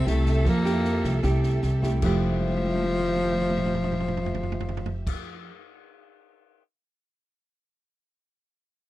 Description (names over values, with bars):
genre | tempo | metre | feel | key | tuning
bossa nova | 153 BPM | 4/4 | straight | F major | A4 = 440 Hz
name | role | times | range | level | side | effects
breathy tenor saxophone | melody | 0.0-5.1 s | F3 to Bb3 | -28 LUFS | left 3 dB | none
breathy trombone | second line | 0.0-5.1 s | F3 to Bb3 | -34 LUFS | right 4 dB | none
nylon-string guitar | accompaniment | 0.0-5.6 s | C3 to G4 | -29 LUFS | right 1 dB | none
dark studio string section | sustained chords | 0.0-5.1 s | A3 to E5 | -35 LUFS | right 1 dB | none
upright bass | bass | 0.0-5.1 s | F1 to F2 | -27 LUFS | equal | none
open jazz drum kit | drums | 0.1-6.6 s | crash cymbal, kick drum, rim click, snare drum, toms | -33 LUFS | right 1 dB | none
room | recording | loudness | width
little or no reverb | dry, close 1970s-style studio recording | -22 LUFS | side -16 dB against mid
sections
0.0-2.0 A section; 2.0-5.2 B section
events
drum fill 2.2-5.1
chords
0.0 Fmaj9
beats
0.07 | 0.46 0.85 1.24 1.63 | 2.02 2.42 2.81 3.20 | 3.59 3.98 4.38 4.77